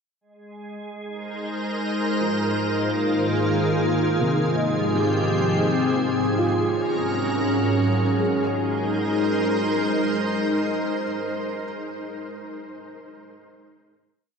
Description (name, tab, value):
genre	ambient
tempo	free time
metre	none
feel	none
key	Ab major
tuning	A4 = 440 Hz
part	soft additive organ-like pad	sustained chords	0.6-12.1 s	Ab2 to C5	-22 LUFS	equal	ensemble chorus, built-in reverb
part	felt-muted upright piano	arpeggios	2.2-14.4 s	C3 to Eb5	-30 LUFS	left 1 dB	analog delay
room	wet huge ambient reverb, RT60 7.1 s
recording	dreamy mix soaked in reverb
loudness	-20 LUFS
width	side -5 dB against mid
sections	0.2-8.2 A section; 8.2-12.2 final chord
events	fade-in on felt piano 0.2-8.2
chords	0.2 Abadd9; 2.2 Ebsus24/Ab; 4.2 Fm9/Ab; 6.2 Gbmaj9/Ab; 8.2 Abadd9